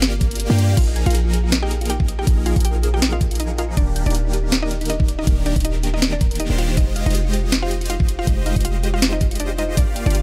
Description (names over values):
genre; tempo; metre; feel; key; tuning
future bass; 160 BPM; 4/4; swing 55% on 16ths, half-time; F dorian; A4 = 439 Hz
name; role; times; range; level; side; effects
supersaw chords; riff; 0.0-10.2 s; Eb3 to G5; -29 LUFS; equal; phaser, sidechain pumping
warm 808-style bass; bass; 0.0-10.2 s; Eb1 to G2; -23 LUFS; equal; sidechain pumping
trap drum kit; drums; 0.0-10.2 s; crash cymbal, hi-hat, snare drum; -25 LUFS; equal; none
swell; sound effects; 0.2-0.8 s; none; -35 LUFS; equal; none
electronic kick drum; drums; 0.2-9.9 s; none; -21 LUFS; equal; none
mallet-like synth pluck; melody; 0.8-10.2 s; D4 to G5; -30 LUFS; equal; chorus, vintage 12-bit sampler grit, sidechain pumping, dub echo
thumb-piano-like synth pluck; arpeggios; 0.8-10.2 s; D4 to Ab5; -35 LUFS; equal; chorus, sidechain pumping, digital delay
room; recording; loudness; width
little or no reverb; none; -19 LUFS; mono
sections
0.0-10.2 A section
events
swell 0.2-0.8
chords
0.0 Gm7; 0.8 Bb7sus4; 3.8 Ebmaj7; 6.8 Fm9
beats
0.02 0.40 | 0.77 1.15 1.52 1.90 | 2.27 2.65 3.02 3.40 | 3.77 4.15 4.52 4.90 | 5.27 5.65 6.02 6.40 | 6.77 7.15 7.52 7.90 | 8.27 8.65 9.02 9.40 | 9.77 10.15